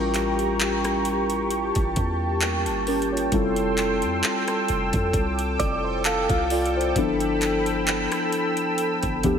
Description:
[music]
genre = contemporary R&B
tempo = 66 BPM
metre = 4/4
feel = swing 54% on 16ths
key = unclear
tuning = A4 = 442 Hz
[part]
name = muted felt-like synth keys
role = accompaniment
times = 0.0-9.4 s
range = F3 to F5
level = -25 LUFS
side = left 2 dB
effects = chorus
[part]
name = warm analog pad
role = sustained chords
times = 0.0-9.4 s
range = G4 to E6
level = -26 LUFS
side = right 1 dB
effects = chorus
[part]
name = warm 808-style bass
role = bass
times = 0.0-9.4 s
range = F1 to F2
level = -30 LUFS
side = equal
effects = none
[part]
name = smooth R&B drum kit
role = drums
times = 0.1-9.4 s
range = handclaps, hi-hat, kick drum, rim click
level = -28 LUFS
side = equal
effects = none
[part]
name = direct-recorded clean electric guitar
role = arpeggios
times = 5.6-6.9 s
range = F4 to D5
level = -30 LUFS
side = right 4 dB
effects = analog chorus, tape echo
[sound]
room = wet lush hall reverb, RT60 2.6 s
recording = dreamy mix soaked in reverb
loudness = -21 LUFS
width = side -7 dB against mid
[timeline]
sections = 0.0-9.4 A section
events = none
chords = 0.0 A7b9b13; 3.3 Fmaj7; 7.0 G13

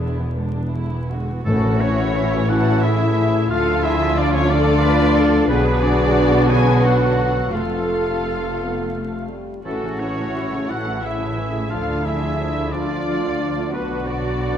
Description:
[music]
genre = cinematic, emotional film score for orchestra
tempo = 59 BPM (dotted quarters)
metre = 6/8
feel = rubato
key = A major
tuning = A4 = 440 Hz
[part]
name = muted studio violin section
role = melody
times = 0.0-14.6 s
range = B3 to G#5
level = -27 LUFS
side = left 3 dB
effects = none
[part]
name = muted studio violin section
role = second line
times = 0.0-14.6 s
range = A3 to F#4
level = -29 LUFS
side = left 2 dB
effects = none
[part]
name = warm clarinet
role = second line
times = 0.0-14.6 s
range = A3 to G#4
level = -25 LUFS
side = left 3 dB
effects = none
[part]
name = muted studio viola section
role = accompaniment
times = 0.0-14.6 s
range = C3 to B3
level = -27 LUFS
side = right 1 dB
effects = none
[part]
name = muted studio cello section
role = bass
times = 0.0-14.6 s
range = E2 to B4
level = -27 LUFS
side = right 2 dB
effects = none
[part]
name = muted symphonic double bass section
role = bass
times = 0.0-14.6 s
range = E1 to D2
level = -23 LUFS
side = right 1 dB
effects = none
[part]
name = bright large flute ensemble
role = second line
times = 1.5-14.6 s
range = C#4 to B4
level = -28 LUFS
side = right 2 dB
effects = none
[part]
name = bright oboe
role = second line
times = 1.5-14.6 s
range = A4 to G#5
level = -29 LUFS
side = right 2 dB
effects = none
[part]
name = mellow French horn section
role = sustained chords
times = 1.5-14.6 s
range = E3 to B4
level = -27 LUFS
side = left 2 dB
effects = none
[part]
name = timpani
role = percussion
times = 1.5-2.5 s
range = A2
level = -24 LUFS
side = equal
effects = none
[sound]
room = wet scoring stage reverb, RT60 1.6 s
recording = dark, warm production, vinyl crackle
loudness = -17 LUFS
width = side -9 dB against mid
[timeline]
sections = 0.0-1.5 A section; 1.5-14.6 B section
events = none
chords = 0.0 E7; 1.5 A; 3.5 Dm; 5.5 Bm; 7.5 F; 9.6 A; 11.7 Dm; 13.7 Bm

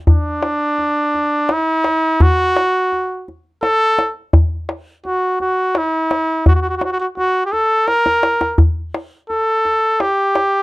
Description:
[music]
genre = Persian modal ensemble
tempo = 85 BPM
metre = 3/4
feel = straight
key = unclear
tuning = A4 = 443 Hz
[part]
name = clear trumpet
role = melody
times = 0.1-10.6 s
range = D4 to Bb4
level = -15 LUFS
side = equal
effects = none
[part]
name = tombak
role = percussion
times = 0.1-10.5 s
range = none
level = -14 LUFS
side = left 1 dB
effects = none
[sound]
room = light reverb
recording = close, detailed microphones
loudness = -14 LUFS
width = side -20 dB against mid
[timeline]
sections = 0.1-10.6 A section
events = drum fill 7.9-8.6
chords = none

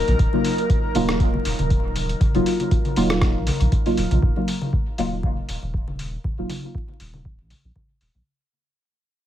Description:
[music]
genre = dub techno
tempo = 119 BPM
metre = 4/4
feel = swing 55% on 16ths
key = Eb minor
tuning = A4 = 441 Hz
[part]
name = airy breathy pad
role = sustained chords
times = 0.0-4.2 s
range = Gb3 to Bb4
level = -29 LUFS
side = left 1 dB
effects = chorus, sidechain pumping
[part]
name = soft dub sub bass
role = bass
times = 0.0-8.2 s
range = Eb1 to Bb1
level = -25 LUFS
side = equal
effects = sidechain pumping
[part]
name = drifting glass-harmonics texture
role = texture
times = 0.0-4.2 s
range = Bb4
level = -35 LUFS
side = left 2 dB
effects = chorus, built-in reverb, sidechain pumping
[part]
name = lo-fi sampler-style drum kit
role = drums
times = 0.1-8.1 s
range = hi-hat, rim click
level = -31 LUFS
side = equal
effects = overdrive, dub echo
[part]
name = congas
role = percussion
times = 0.1-8.2 s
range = none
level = -31 LUFS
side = left 2 dB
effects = overdrive, sidechain pumping on perc, dub echo
[part]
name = electronic kick drum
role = drums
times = 0.2-7.9 s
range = none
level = -22 LUFS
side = equal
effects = none
[part]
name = deep mellow chord stab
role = stabs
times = 0.3-6.5 s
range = Gb3 to F4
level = -24 LUFS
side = equal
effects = chorus, phaser, vintage 12-bit sampler grit, sidechain pumping, dub echo
[sound]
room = little or no reverb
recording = vinyl crackle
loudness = -19 LUFS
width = side -11 dB against mid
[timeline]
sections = 0.0-4.2 A section; 4.2-8.3 B section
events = filter sweep on synth stab 0.0-4.2; fade-out 4.2-8.3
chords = 0.0 Ebmadd9

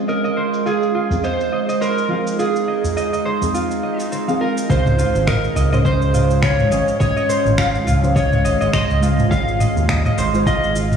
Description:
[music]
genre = organic downtempo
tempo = 104 BPM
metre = 4/4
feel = swing 56% on 16ths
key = unclear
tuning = A4 = 440 Hz
[part]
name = deep mellow chord stab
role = accompaniment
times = 0.0-10.6 s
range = F3 to Db5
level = -27 LUFS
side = equal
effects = chorus, cassette tape, sidechain pumping, tape echo
[part]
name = bowed-like drone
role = sustained chords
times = 0.0-11.0 s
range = Ab3 to F5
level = -24 LUFS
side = right 2 dB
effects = built-in reverb, sidechain pumping
[part]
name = concert harp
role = arpeggios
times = 0.0-11.0 s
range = C4 to F5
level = -24 LUFS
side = right 2 dB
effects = tape echo
[part]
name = electric slide guitar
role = melody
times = 0.1-11.0 s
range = Ab4 to F5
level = -21 LUFS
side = right 1 dB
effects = tape echo
[part]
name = afro-pop drum kit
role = drums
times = 0.1-11.0 s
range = finger snaps, shaker, toms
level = -24 LUFS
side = equal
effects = small room ambience
[part]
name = udu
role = percussion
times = 1.1-3.5 s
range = none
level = -26 LUFS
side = right 1 dB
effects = none
[part]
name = round analog bass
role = bass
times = 4.7-11.0 s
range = Ab1 to Eb2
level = -18 LUFS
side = equal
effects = none
[part]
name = electronic kick drum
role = drums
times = 4.7-10.6 s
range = none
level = -22 LUFS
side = equal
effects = overdrive, small room ambience
[sound]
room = moderate lush hall reverb, RT60 1.7 s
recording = played on a big sound system in a bare room, stone room reverb, low-pass filter, studio ambience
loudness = -15 LUFS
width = side -7 dB against mid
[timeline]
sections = 0.0-4.7 A section; 4.7-11.0 B section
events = filter sweep on synth drone 0.0-4.7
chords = 0.1 Ab6; 4.7 Dbmaj7; 9.3 Ab6

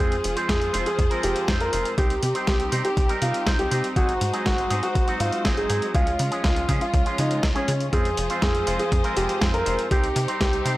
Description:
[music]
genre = italo disco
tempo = 121 BPM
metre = 4/4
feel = straight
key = F minor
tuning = A4 = 438 Hz
[part]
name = warm grand piano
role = melody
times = 0.0-10.7 s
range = Db4 to Bb4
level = -26 LUFS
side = equal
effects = tape echo
[part]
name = rich studio string section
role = sustained chords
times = 0.0-10.8 s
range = F3 to C5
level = -30 LUFS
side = left 2 dB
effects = none
[part]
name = electric guitar with an envelope filter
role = stabs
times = 0.0-10.8 s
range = F3 to C5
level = -30 LUFS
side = right 2 dB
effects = none
[part]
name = tight sequencer bass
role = bass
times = 0.0-10.8 s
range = F1 to Db3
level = -27 LUFS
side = equal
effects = none
[part]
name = dusty soul sampler-style drum kit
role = drums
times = 0.1-10.8 s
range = hi-hat, snare drum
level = -29 LUFS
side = equal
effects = none
[part]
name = electronic kick drum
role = drums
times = 0.5-10.5 s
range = none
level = -24 LUFS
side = equal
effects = none
[sound]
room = little or no reverb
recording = dry, gritty hardware recording, vinyl crackle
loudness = -20 LUFS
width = side -17 dB against mid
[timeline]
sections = 0.0-10.8 A section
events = none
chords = 0.0 Fm; 2.0 Cm; 4.0 Ab7; 5.9 Db; 7.9 Fm; 9.9 Cm

